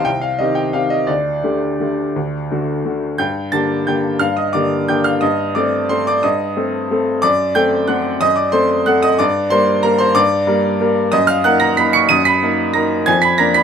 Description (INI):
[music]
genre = classical, piano waltz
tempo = 162-195 BPM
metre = 3/4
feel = rubato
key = G minor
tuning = A4 = 441 Hz
[part]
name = bright upright piano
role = solo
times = 0.0-13.6 s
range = C2 to Eb7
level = -14 LUFS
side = equal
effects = none
[sound]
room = light reverb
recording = close, detailed microphones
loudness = -14 LUFS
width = side -7 dB against mid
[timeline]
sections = 0.0-3.2 A section; 3.2-13.6 B section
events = none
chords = 0.1 Cm; 1.1 Dsus4; 2.2 D; 3.2 Gm; 5.2 Am7b5/G; 7.2 D7/F#; 9.2 Gm; 11.1 Ebm/Gb; 13.1 Bb7/F